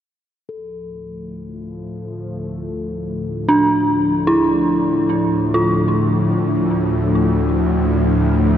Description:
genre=dark ambient drone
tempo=56 BPM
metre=4/4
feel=straight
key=D minor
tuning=A4 = 440 Hz
part: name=sweeping resonant pad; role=sustained chords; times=0.5-8.6 s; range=F3 to D4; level=-22 LUFS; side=left 1 dB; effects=chorus
part: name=bowed-like drone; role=drone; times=1.3-8.6 s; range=D2 to A2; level=-21 LUFS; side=left 1 dB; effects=built-in reverb
part: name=quartz singing bowl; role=texture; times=0.5-8.6 s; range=A4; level=-34 LUFS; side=left 4 dB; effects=none
part: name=dark detuned synth bell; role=arpeggios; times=3.5-8.6 s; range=D4 to F4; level=-18 LUFS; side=right 1 dB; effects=chorus, tape echo
room=wet huge ambient reverb, RT60 7.5 s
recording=none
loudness=-15 LUFS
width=side -10 dB against mid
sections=0.5-8.6 A section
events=fade-in on synth drone 0.5-8.6; fade-in on analog synth pad 0.5-8.6; fade-in on singing bowl 0.5-8.6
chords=0.5 Dm

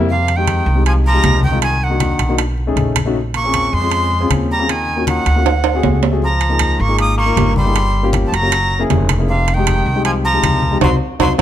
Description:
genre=Afro-Cuban jazz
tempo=157 BPM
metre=4/4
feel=straight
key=F minor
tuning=A4 = 436 Hz
part: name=dark grand piano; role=accompaniment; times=0.0-11.4 s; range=Ab3 to Bb4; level=-21 LUFS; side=left 4 dB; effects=none
part: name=upright bass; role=bass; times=0.0-11.4 s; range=F1 to F2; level=-17 LUFS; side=equal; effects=none
part: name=breathy bright jazz flute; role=melody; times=0.1-11.4 s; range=F5 to Eb6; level=-19 LUFS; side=right 2 dB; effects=none
part: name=trombone with metal mute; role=second line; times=0.1-11.4 s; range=C3 to Bb3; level=-24 LUFS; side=left 3 dB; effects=none
part: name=congas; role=percussion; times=0.1-11.4 s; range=none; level=-22 LUFS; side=left 3 dB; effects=none
part: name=timbales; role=percussion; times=0.3-11.4 s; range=none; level=-21 LUFS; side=right 9 dB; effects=none
room=light reverb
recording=close, detailed microphones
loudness=-13 LUFS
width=side -11 dB against mid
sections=0.1-11.4 A section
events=drum fill 5.5-6.2; band accent 10.8-11.4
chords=0.1 Fm7; 1.6 Cm7b5; 2.4 B13; 3.2 Bbm7; 4.7 Ebm7; 5.5 D7#11; 6.2 Db6; 7.8 Gm7b5; 8.5 Gb9; 9.3 Fm7; 10.8 Cdim

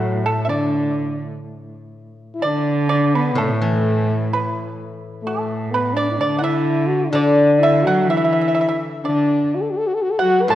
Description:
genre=chinese traditional, Chinese chamber ensemble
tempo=63 BPM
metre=2/4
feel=rubato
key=D gong mode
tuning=A4 = 439 Hz
part: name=warm French horn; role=melody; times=0.0-10.6 s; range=F#3 to B4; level=-20 LUFS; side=left 3 dB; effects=none
part: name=pipa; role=second line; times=0.0-10.6 s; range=F#4 to A5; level=-22 LUFS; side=right 3 dB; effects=none
part: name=warm cello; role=second line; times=0.0-10.6 s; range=A2 to A3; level=-23 LUFS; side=right 3 dB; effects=none
part: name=steel-string zither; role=accompaniment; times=0.0-10.6 s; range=A2 to E3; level=-23 LUFS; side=left 2 dB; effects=none
room=wet scoring stage reverb, RT60 1.8 s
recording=worn, warbling old tape, cassette tape, warbly pitch drift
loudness=-16 LUFS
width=side -13 dB against mid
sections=0.0-1.5 A section; 1.5-10.6 B section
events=none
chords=none

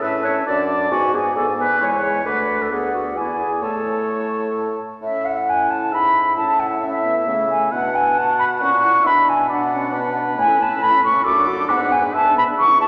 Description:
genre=quick classical-period movement for wind quintet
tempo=134 BPM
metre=3/4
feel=straight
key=A major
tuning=A4 = 440 Hz
part: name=mellow concert flute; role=melody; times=0.0-12.9 s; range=E5 to D6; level=-20 LUFS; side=equal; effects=none
part: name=warm oboe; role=second line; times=0.0-12.8 s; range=A4 to F#5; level=-28 LUFS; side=equal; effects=none
part: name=mellow French horn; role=accompaniment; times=0.0-12.9 s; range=G#3 to F#4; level=-32 LUFS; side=equal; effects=none
part: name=mellow clarinet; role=accompaniment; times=0.0-12.9 s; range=C#4 to D5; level=-27 LUFS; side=equal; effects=none
part: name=clear bassoon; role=bass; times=0.0-12.9 s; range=D2 to C#3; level=-30 LUFS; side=equal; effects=none
room=wet concert hall reverb, RT60 2.0 s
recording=none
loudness=-19 LUFS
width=mono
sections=0.0-5.0 A section; 5.0-12.9 B section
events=none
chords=0.5 D/F#; 0.9 G#dim; 1.8 C#m/E; 2.3 D; 2.7 Bm/D; 3.2 E7; 3.6 A; 5.9 E/G#; 6.4 A; 7.7 Bm; 8.6 F#7/A#; 9.1 Bm; 10.4 A; 11.3 D/F#; 11.7 G#dim

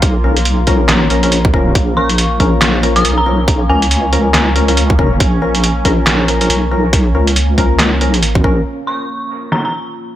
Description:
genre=deep dubstep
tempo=139 BPM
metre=4/4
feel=swing 59% on 16ths, half-time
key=Bb phrygian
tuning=A4 = 439 Hz
part: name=deep dark ambient pad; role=sustained chords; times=0.0-10.2 s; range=Bb3 to F4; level=-22 LUFS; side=equal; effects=chorus, built-in reverb
part: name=deep soft wobble bass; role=bass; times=0.0-8.6 s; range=F1 to Db2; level=-15 LUFS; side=equal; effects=chorus, tube saturation
part: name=electronic kick drum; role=drums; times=0.0-8.5 s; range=none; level=-14 LUFS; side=equal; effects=overdrive
part: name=trip hop sampler-style drum kit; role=drums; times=0.0-9.6 s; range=handclaps, hi-hat, snare drum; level=-16 LUFS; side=right 1 dB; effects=overdrive, low-pass filter on hats, low-pass filter on snare
part: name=percussive organ stab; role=stabs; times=0.2-8.6 s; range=F3 to Bb4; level=-18 LUFS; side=left 2 dB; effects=lush chorus, dub echo
part: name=dark detuned synth bell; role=melody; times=2.0-4.3, 8.9-9.7 s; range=Ab5 to Eb6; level=-20 LUFS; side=equal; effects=chorus, vintage 12-bit sampler grit, dub echo
room=light reverb, digital ambience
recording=none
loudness=-10 LUFS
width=side -12 dB against mid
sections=0.0-8.7 A section; 8.7-10.2 B section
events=drop 0.0-8.7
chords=0.0 Bbm; 8.7 Bb5

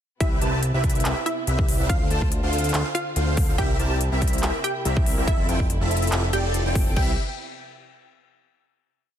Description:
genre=future bass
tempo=142 BPM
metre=4/4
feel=swing 54% on 16ths, half-time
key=C major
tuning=A4 = 440 Hz
part: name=wide unison pluck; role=melody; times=0.2-7.1 s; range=E4 to G5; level=-31 LUFS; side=right 1 dB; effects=sidechain pumping, digital delay
part: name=dark studio string section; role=sustained chords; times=0.2-7.2 s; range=C3 to E5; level=-37 LUFS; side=right 1 dB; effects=none
part: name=airy dreamy lead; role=arpeggios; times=0.2-7.1 s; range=D5 to A5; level=-34 LUFS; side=right 1 dB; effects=chorus, sidechain pumping, digital delay
part: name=supersaw chords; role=riff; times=0.2-7.1 s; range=C4 to A5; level=-28 LUFS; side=equal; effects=ensemble chorus, sidechain pumping
part: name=fat analog bass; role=bass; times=0.2-7.2 s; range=F1 to D2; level=-24 LUFS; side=equal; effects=sidechain pumping
part: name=big-room dance drum kit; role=drums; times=0.2-7.1 s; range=crash cymbal, handclaps, hi-hat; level=-30 LUFS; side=left 1 dB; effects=overdrive
part: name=electronic kick drum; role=drums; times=0.2-7.1 s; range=none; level=-23 LUFS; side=equal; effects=overdrive
room=digital ambience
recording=dense, heavily limited modern master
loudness=-20 LUFS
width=side -10 dB against mid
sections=0.2-7.0 drop; 7.0-8.7 final chord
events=drop 0.2-7.0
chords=0.2 Cmaj7; 1.9 Dm7; 3.6 C7; 5.3 Fmaj7; 7.0 Cmaj7

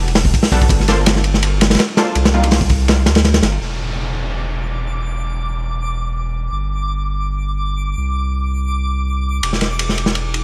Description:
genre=drum and bass, jungle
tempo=165 BPM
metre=4/4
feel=straight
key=unclear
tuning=A4 = 439 Hz
part: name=saturated sub bass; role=bass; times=0.0-10.4 s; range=E1 to D2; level=-21 LUFS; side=equal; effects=none
part: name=crunchy breakbeat drum kit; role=drums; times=0.1-3.5, 9.4-10.4 s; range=hi-hat, kick drum, ride cymbal, snare drum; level=-18 LUFS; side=equal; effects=none
part: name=dusty soul sampler-style drum kit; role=drums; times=0.2-3.6 s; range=hi-hat, snare drum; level=-31 LUFS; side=equal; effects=none
part: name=orchestra-hit-like synth stab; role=stabs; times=0.5-2.5 s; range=Eb3 to C5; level=-25 LUFS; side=equal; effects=built-in reverb, dub echo
part: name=downlifter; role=sound effects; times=3.6-6.5 s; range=none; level=-32 LUFS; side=equal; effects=none
part: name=twinkling granular texture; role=texture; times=4.4-10.4 s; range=D6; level=-30 LUFS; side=equal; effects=built-in reverb
room=light reverb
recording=dark, warm production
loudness=-17 LUFS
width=mono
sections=0.0-3.6 A section; 3.6-10.4 B section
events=drop 0.0-3.6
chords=0.0 Em11; 0.7 Gm11; 2.2 Cm11; 3.6 Dsus2/E; 6.5 G5; 8.0 Csus2; 9.4 Dsus2/E

